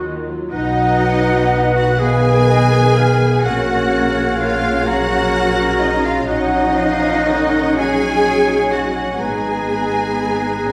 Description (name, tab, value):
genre	cinematic, emotional film score for orchestra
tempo	41 BPM (dotted quarters)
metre	6/8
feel	rubato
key	unclear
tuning	A4 = 438 Hz
part	rich studio violin section	melody	0.0-10.7 s	D#5 to Ab5	-30 LUFS	equal	none
part	clear clarinet	second line	0.0-10.7 s	F4 to Db5	-29 LUFS	equal	none
part	rich studio violin section	second line	0.0-10.7 s	D#5 to Ab5	-27 LUFS	equal	none
part	warm oboe	second line	0.0-10.7 s	Gb4 to Bb5	-27 LUFS	equal	none
part	warm studio viola section	accompaniment	0.0-10.7 s	Eb3 to Eb4	-24 LUFS	equal	none
part	rich studio double bass section	bass	0.0-10.7 s	Ab1 to Eb2	-24 LUFS	equal	none
part	warm studio cello section	bass	0.0-10.7 s	Eb3 to Ab4	-22 LUFS	equal	none
part	flute section	second line	0.5-10.7 s	B4 to F#5	-26 LUFS	equal	none
part	dark French horn section	sustained chords	0.5-10.7 s	B3 to B4	-25 LUFS	equal	none
room	wet scoring stage reverb, RT60 1.8 s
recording	heard from further back in the room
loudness	-16 LUFS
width	mono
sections	0.5-10.7 A section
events	none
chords	0.0 Ebm; 0.5 B; 3.4 Gbadd9/Bb; 9.2 Abmadd9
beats	| 0.52 2.00 | 3.44 4.86 | 6.27 7.75 | 9.20 10.65